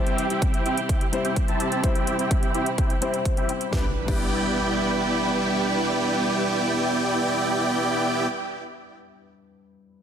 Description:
EDM, festival progressive house; 127 BPM; 4/4; straight; G major; A4 = 439 Hz
warm baby grand piano; accompaniment; 0.0-10.0 s; G3 to C5; -31 LUFS; left 5 dB; sidechain pumping, digital delay
dark studio string section; sustained chords; 0.0-8.3 s; C3 to B4; -30 LUFS; right 3 dB; sidechain pumping
dense compressed supersaw; riff; 0.0-8.3 s; B3 to A5; -24 LUFS; right 1 dB; sidechain pumping, low-pass filter, digital delay
house drum kit; drums; 0.1-4.2 s; crash cymbal, hi-hat, snare drum; -35 LUFS; equal; overdrive
electronic kick drum; drums; 0.4-4.2 s; -24 LUFS; equal
impact; sound effects; 3.7-8.6 s; -35 LUFS; equal
moderate lush hall reverb, RT60 1.9 s, digital ambience; dense, heavily limited modern master; -21 LUFS; side -8 dB against mid
0.0-3.7 A section; 3.7-7.5 B section
filter sweep on supersaw synth 0.0-3.7
0.0 C; 3.7 G6

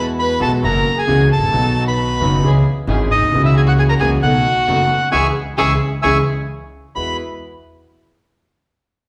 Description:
tango; 133 BPM; 4/4; rubato; E major; A4 = 440 Hz
bandoneon; melody; 0.0-7.2 s; D#5 to C#6; -21 LUFS; equal
warm violin; second line; 0.0-7.2 s; D#4 to B4; -26 LUFS; equal
warm concert grand piano; accompaniment; 0.0-7.1 s; F#1 to G#4; -22 LUFS; equal
dark chamber string section; stabs; 0.0-7.2 s; G#3 to A4; -31 LUFS; equal
upright bass; bass; 0.0-7.2 s; F#1 to E2; -21 LUFS; equal
wet recital hall reverb, RT60 1.3 s; recorded in a church or concert hall; -16 LUFS; mono
0.0-7.0 A section; 7.0-8.8 B section
band accent 5.1-7.0
0.0 Eadd9; 0.6 F#7; 1.5 B; 2.4 C#m; 3.3 F#7/C#; 4.2 B7; 5.1 C#m; 6.5 N.C.; 7.0 Eadd9

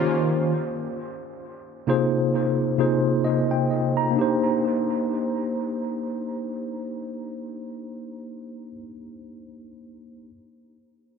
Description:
R&B; 66 BPM; 4/4; swing 58% on 16ths; C minor; A4 = 443 Hz
mellow tine electric piano; accompaniment; 0.0-10.3 s; C3 to Bb5; -24 LUFS; equal; medium stereo tremolo, dub echo
warm analog pad; sustained chords; 0.0-0.5 s; Eb3 to C5; -31 LUFS; equal; chorus
moderate echo chamber reverb, RT60 1.8 s, studio ambience; echo-heavy mix; -22 LUFS; side -6 dB against mid
0.0-4.1 A section; 4.1-7.8 B section
0.0 Eb13; 0.5 Ab69/C; 4.1 Cm9

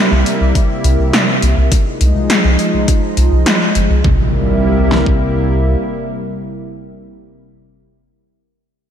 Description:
synthwave; 103 BPM; 4/4; straight; A4 = 439 Hz
lush unison pad; sustained chords; 0.0-7.1 s; C3 to E4; -17 LUFS; equal; chorus, sidechain pumping
chorused synth bass; bass; 0.1-5.8 s; G1 to C2; -14 LUFS; equal
80s electronic pad drums; drums; 0.3-3.9 s; hi-hat, snare drum; -16 LUFS; equal
pop drum kit; drums; 0.6-5.2 s; kick drum, snare drum; -14 LUFS; equal; overdrive
impact; sound effects; 4.0-7.9 s; -21 LUFS; equal
moderate lush hall reverb, RT60 2.2 s; big arena sound; -11 LUFS; side -9 dB against mid
0.0-4.0 A section; 4.0-6.4 B section
0.0 C7; 1.7 Fm7/C; 4.0 C7

